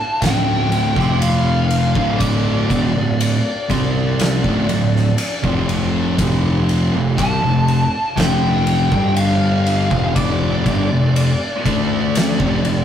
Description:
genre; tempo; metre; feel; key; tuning
stoner and doom metal; 60 BPM; 4/4; straight; unclear; A4 = 436 Hz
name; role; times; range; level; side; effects
fuzz lead guitar; melody; 0.0-12.8 s; D5 to A5; -23 LUFS; equal; wah, distortion
thick fuzz guitar; riff; 0.2-12.8 s; D2 to D4; -20 LUFS; left 5 dB; distortion
thick fuzz guitar; riff; 0.2-12.8 s; D2 to D4; -20 LUFS; right 4 dB; distortion
fuzz picked electric bass; bass; 0.2-12.8 s; D1 to D2; -22 LUFS; equal; overdrive, tube saturation
oversized low-tuned drum kit; drums; 0.2-12.8 s; kick drum, ride cymbal, snare drum; -22 LUFS; equal; none
room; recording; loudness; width
light reverb; rough rehearsal-room recording, warm saturation; -14 LUFS; side -9 dB against mid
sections
0.0-12.8 A section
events
none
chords
0.0 D5; 1.0 F5; 2.0 Dm; 6.2 F5; 8.9 G5; 9.9 F5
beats
0.22 1.21 | 2.21 3.20 4.20 5.19 | 6.19 7.18 8.18 9.17 | 10.16 11.16 12.15

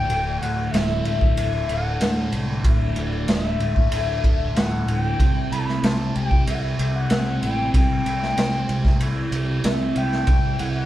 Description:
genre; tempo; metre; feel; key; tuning
psychedelic rock; 94 BPM; 4/4; straight; D mixolydian; A4 = 441 Hz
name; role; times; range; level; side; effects
mellow concert flute; melody; 0.0-10.9 s; D5 to B5; -27 LUFS; left 2 dB; none
thick fuzz guitar; riff; 0.0-10.9 s; D2 to C5; -27 LUFS; equal; distortion, phaser
growling picked electric bass; bass; 0.0-10.9 s; D1 to D2; -25 LUFS; equal; overdrive
raw garage drum kit; drums; 0.1-10.7 s; kick drum, ride cymbal, snare drum; -22 LUFS; equal; none
room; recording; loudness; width
wet studio reverb, RT60 0.5 s; band playing live in one room; -19 LUFS; side -14 dB against mid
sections
0.0-10.9 A section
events
none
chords
0.0 Dsus2; 5.2 C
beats
| 0.10 0.74 1.38 2.02 | 2.65 3.29 3.92 4.56 | 5.20 5.83 6.47 7.11 | 7.74 8.38 9.02 9.65 | 10.29

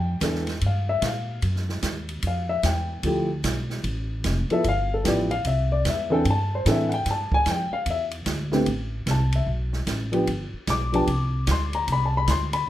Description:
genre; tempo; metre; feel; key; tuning
jazz, small-group swing and bop; 149 BPM; 4/4; swing 64% on 8ths; C major, A minor from 8.7 s; A4 = 439 Hz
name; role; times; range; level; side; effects
warm upright piano; accompaniment; 0.0-12.7 s; A2 to D6; -24 LUFS; left 2 dB; none
upright bass; bass; 0.0-12.7 s; F1 to Bb2; -26 LUFS; equal; none
open jazz drum kit; drums; 0.2-12.6 s; hi-hat, kick drum, ride cymbal, snare drum; -30 LUFS; right 2 dB; none
room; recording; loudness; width
light reverb; none; -22 LUFS; side -13 dB against mid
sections
0.0-8.7 A section; 8.7-12.7 A section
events
none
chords
0.0 Em7; 0.6 Gm7; 1.4 Ebm; 2.2 Fmaj9; 3.8 Fmaj7#11; 4.6 G13; 5.4 C69; 8.7 Amadd9; 10.3 G; 11.9 Cmaj7sus2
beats
0.21 | 0.62 1.02 1.42 1.83 | 2.23 2.63 3.03 3.44 | 3.84 4.24 4.64 5.05 | 5.45 5.85 6.25 6.65 | 7.05 7.46 7.86 8.26 | 8.66 9.06 9.47 9.87 | 10.27 10.67 11.07 11.47 | 11.88 12.28 12.68

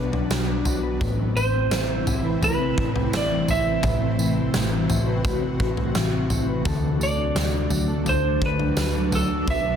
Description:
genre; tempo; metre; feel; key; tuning
dream pop; 85 BPM; 4/4; straight; A dorian; A4 = 440 Hz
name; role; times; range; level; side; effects
ethereal airy pad; sustained chords; 0.0-9.8 s; C3 to B4; -26 LUFS; right 1 dB; ensemble chorus, built-in reverb, tremolo
mellow electric guitar; arpeggios; 0.0-9.8 s; A2 to B4; -28 LUFS; left 4 dB; lush chorus, digital delay
vintage muted picked electric bass; bass; 0.0-9.8 s; A1 to D2; -27 LUFS; right 1 dB; none
huge arena drum kit; drums; 0.1-9.6 s; kick drum, snare drum, tambourine, toms; -27 LUFS; equal; none
clean lap steel guitar; melody; 1.4-9.8 s; A4 to E5; -26 LUFS; right 3 dB; digital delay
room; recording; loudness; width
light reverb, small room ambience; dense, heavily limited modern master; -20 LUFS; side -8 dB against mid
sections
0.0-9.8 A section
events
none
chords
0.0 Bm; 1.0 Amadd9; 6.7 D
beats
0.30 | 1.01 1.72 2.42 3.13 | 3.83 4.54 5.24 5.95 | 6.66 7.36 8.07 8.77 | 9.48

